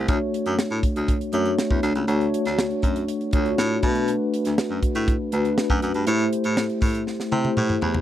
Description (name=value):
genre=polished 1980s jazz-funk pop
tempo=120 BPM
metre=4/4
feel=straight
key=D major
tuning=A4 = 440 Hz
part: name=mellow tine electric piano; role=accompaniment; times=0.0-8.0 s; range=A3 to C#5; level=-23 LUFS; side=left 1 dB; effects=medium stereo tremolo, wide subtle chorus
part: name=bright baritone saxophone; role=bass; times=0.0-8.0 s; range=C#2 to C3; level=-25 LUFS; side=equal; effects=none
part: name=tight funk drum kit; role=drums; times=0.1-8.0 s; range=hi-hat, kick drum, snare drum, toms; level=-24 LUFS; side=right 1 dB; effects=none
room=small room ambience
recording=dry, close 1970s-style studio recording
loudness=-20 LUFS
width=side -12 dB against mid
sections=0.0-8.0 A section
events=drum fill 7.1-8.0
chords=0.1 Dmaj7; 3.8 Bm7; 6.1 Am7